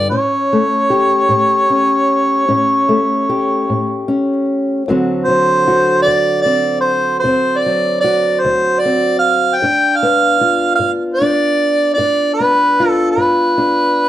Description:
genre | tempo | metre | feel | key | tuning
acoustic country blues, solo or duo | 50 BPM (dotted quarters) | 12/8 | straight | unclear | A4 = 438 Hz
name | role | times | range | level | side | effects
mellow harmonica | melody | 0.0-14.1 s | B4 to G5 | -13 LUFS | right 1 dB | slapback echo
fingerpicked old ladder-braced acoustic guitar | accompaniment | 0.0-14.1 s | D2 to G4 | -16 LUFS | left 2 dB | none
room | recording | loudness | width
small room ambience | dry, close 1970s-style studio recording, vinyl crackle | -12 LUFS | side -12 dB against mid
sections
0.0-4.9 A section; 4.9-14.1 A section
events
none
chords
0.1 A7; 4.9 D7; 9.6 G7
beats
| 0.10 1.29 2.48 3.67 | 4.86 6.05 7.24 8.43 | 9.61 10.80 11.98 13.17

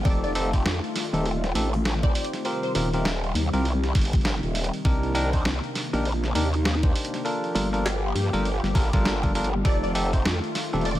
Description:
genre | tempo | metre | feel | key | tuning
glitch hop | 100 BPM | 4/4 | swing 61% on 16ths | unclear | A4 = 438 Hz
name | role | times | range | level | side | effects
plucky unison lead | melody | 0.0-2.7, 9.6-11.0 s | C5 to D5 | -34 LUFS | left 1 dB | ensemble chorus, ping-pong delay
warm analog pad | sustained chords | 0.0-11.0 s | C3 to G4 | -33 LUFS | left 2 dB | chorus, sidechain pumping
growl bass | bass | 0.0-11.0 s | Eb1 to G2 | -25 LUFS | equal | chorus
barky tine electric piano | stabs | 0.1-10.9 s | C4 to C5 | -30 LUFS | equal | sidechain pumping, ping-pong delay
boom bap sampler-style drum kit | drums | 0.1-11.0 s | hi-hat, snare drum | -30 LUFS | right 1 dB | none
electronic kick drum | drums | 0.1-10.2 s | none | -23 LUFS | equal | none
room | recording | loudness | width
digital ambience | none | -22 LUFS | side -14 dB against mid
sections
0.0-11.0 A section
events
none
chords
0.1 F7; 2.5 Eb6; 4.9 Cm7; 7.3 Gm7; 9.7 F7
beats
| 0.05 0.65 1.25 1.85 | 2.45 3.05 3.65 4.25 | 4.85 5.45 6.05 6.65 | 7.25 7.85 8.45 9.05 | 9.65 10.25 10.85

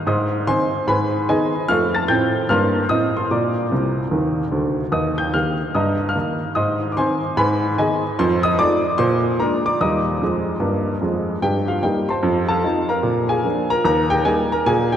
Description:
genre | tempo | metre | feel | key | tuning
jazz, stride piano | 148 BPM | 4/4 | swing 64% on 8ths | Eb major | A4 = 442 Hz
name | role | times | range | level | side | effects
warm baby grand piano | solo | 0.0-15.0 s | C2 to A6 | -17 LUFS | equal | none
room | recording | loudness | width
wet cathedral reverb, RT60 5.5 s | in a vast, echoing space | -17 LUFS | side -9 dB against mid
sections
0.0-11.4 A section; 11.4-15.0 B section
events
grand piano fill 3.7-4.9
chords
0.1 Ab; 0.9 Abm; 1.7 F7; 3.3 Bb; 4.9 Eb; 5.7 Eb/G; 6.6 Ab; 7.4 Abm; 8.2 F7; 9.0 Bb7; 9.8 Eb; 11.4 Eb/G; 12.2 F7; 13.0 Bb7; 13.9 Eb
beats
| 0.06 0.47 0.87 1.28 | 1.69 2.09 2.50 2.90 | 3.31 3.71 4.12 4.53 | 4.93 5.34 5.74 6.15 | 6.56 6.96 7.37 7.78 | 8.18 8.59 8.99 9.40 | 9.80 10.21 10.62 11.02 | 11.43 11.83 12.24 12.64 | 13.05 13.45 13.86 14.26 | 14.66

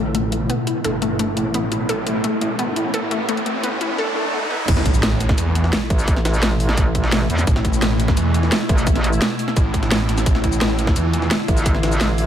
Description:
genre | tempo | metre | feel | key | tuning
dark technical drum and bass | 172 BPM | 4/4 | straight | unclear | A4 = 439 Hz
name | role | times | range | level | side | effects
swarming drone | sustained chords | 0.0-12.3 s | B2 to F4 | -25 LUFS | equal | built-in reverb, sidechain pumping
analog pluck | arpeggios | 0.0-4.6 s | A3 to A4 | -25 LUFS | left 2 dB | chorus, vintage 12-bit sampler grit, sidechain pumping, diffuse ambient delay
snarling distorted saw bass | bass | 0.0-11.3 s | G1 to E2 | -22 LUFS | equal | distortion, overdrive
riser, swell and impact | sound effects | 1.5-6.1 s | none | -27 LUFS | equal | none
drum and bass drum kit | drums | 0.1-12.3 s | crash cymbal, hi-hat, shaker, snare drum | -23 LUFS | equal | overdrive
electronic kick drum | drums | 4.7-11.7 s | none | -18 LUFS | equal | overdrive
jungle sampler-style drum kit | drums | 4.7-12.3 s | hi-hat, snare drum | -30 LUFS | equal | none
metallic wobble bass | bass | 5.9-9.2, 11.5-12.3 s | A1 to E2 | -19 LUFS | equal | chorus
room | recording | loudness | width
moderate cathedral reverb, RT60 5.2 s | dreamy mix soaked in reverb, high-pass filter | -16 LUFS | side -10 dB against mid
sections
0.0-4.7 A section; 4.7-12.3 B section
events
build-up 0.0-4.7; filter sweep on synth drone 0.0-4.7; filter sweep on synth arpeggio sound 0.0-4.7; filter sweep 0.0-4.7; riser 1.5-4.7; swell 4.0-4.7; drop 4.7-12.3; impact 4.7-6.1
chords
0.0 Asus2; 10.3 Dmadd9/A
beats
0.15 | 0.49 0.84 1.19 1.54 | 1.89 2.24 2.59 2.94 | 3.29 3.63 3.98 4.33 | 4.68 5.03 5.38 5.73 | 6.08 6.43 6.77 7.12 | 7.47 7.82 8.17 8.52 | 8.87 9.22 9.56 9.91 | 10.26 10.61 10.96 11.31 | 11.66 12.01

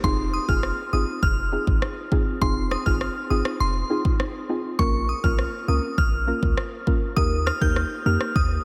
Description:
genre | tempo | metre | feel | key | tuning
dancehall | 101 BPM | 4/4 | straight | F minor | A4 = 439 Hz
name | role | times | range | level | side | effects
glassy synth bell | melody | 0.0-8.6 s | C6 to G6 | -30 LUFS | equal | chorus, diffuse ambient delay
soft round pluck | accompaniment | 0.0-8.3 s | Bb3 to Bb4 | -30 LUFS | equal | chorus
clean 808-style bass | bass | 0.0-8.6 s | F1 to F2 | -28 LUFS | equal | none
afro-pop drum kit | drums | 0.0-8.5 s | kick drum, rim click | -27 LUFS | equal | none
room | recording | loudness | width
moderate cathedral reverb, RT60 5.3 s | dreamy mix soaked in reverb | -23 LUFS | mono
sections
0.0-8.6 A section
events
break 0.0-8.6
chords
0.0 Fm7; 4.8 Bbm; 7.2 Eb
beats
| 0.04 0.63 1.23 1.82 | 2.42 3.01 3.60 4.20 | 4.79 5.39 5.98 6.57 | 7.17 7.76 8.36

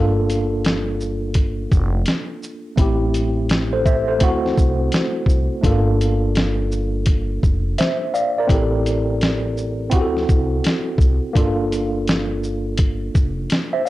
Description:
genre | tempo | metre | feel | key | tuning
lo-fi hip hop | 84 BPM | 4/4 | swing 63% on 16ths | G dorian | A4 = 440 Hz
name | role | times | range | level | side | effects
tine electric piano | accompaniment | 0.0-13.9 s | A3 to F5 | -21 LUFS | equal | overdrive, fast stereo tremolo, cassette tape
upright bass | bass | 0.0-13.4 s | F1 to D2 | -22 LUFS | equal | none
lo-fi sampler-style drum kit | drums | 0.3-13.9 s | hi-hat, kick drum, shaker, snare drum | -18 LUFS | equal | none
room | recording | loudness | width
little or no reverb | dry, gritty hardware recording | -17 LUFS | side -16 dB against mid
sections
0.0-13.9 A section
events
none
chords
0.0 Gm9; 2.8 Am7; 4.2 D7; 5.6 Gm9; 8.5 Am7; 9.9 D7; 11.4 Gm9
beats
0.64 1.36 2.07 | 2.79 3.50 4.21 4.93 | 5.64 6.36 7.07 7.79 | 8.50 9.21 9.93 10.64 | 11.36 12.07 12.79 13.50

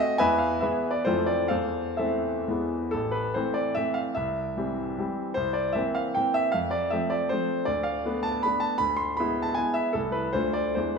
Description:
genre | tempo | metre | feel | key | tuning
classical, romantic triple-time dance for piano with dotted rhythms | 116-170 BPM | 3/4 | rubato | A minor | A4 = 440 Hz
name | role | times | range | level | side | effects
clear grand piano | solo | 0.0-11.0 s | A1 to C6 | -24 LUFS | equal | none
room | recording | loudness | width
moderate recital hall reverb, RT60 1.7 s | minimal, uncompressed stereo recording | -24 LUFS | side -5 dB against mid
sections
0.0-2.9 A section; 2.9-11.0 B section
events
none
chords
0.2 E; 1.1 Fmaj7; 1.5 Am/E; 2.5 E; 2.9 Am; 4.2 C; 5.4 C7; 6.5 F; 7.7 Bm7b5/D; 8.8 E7/D; 9.9 Am/C; 10.3 Dm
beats
| 0.20 0.62 1.06 | 1.50 1.99 2.48 | 2.93 3.35 3.76 | 4.16 4.57 4.98 | 5.36 5.76 6.17 | 6.55 6.93 7.32 | 7.68 8.05 8.44 | 8.80 9.17 9.56 | 9.94 10.33 10.76

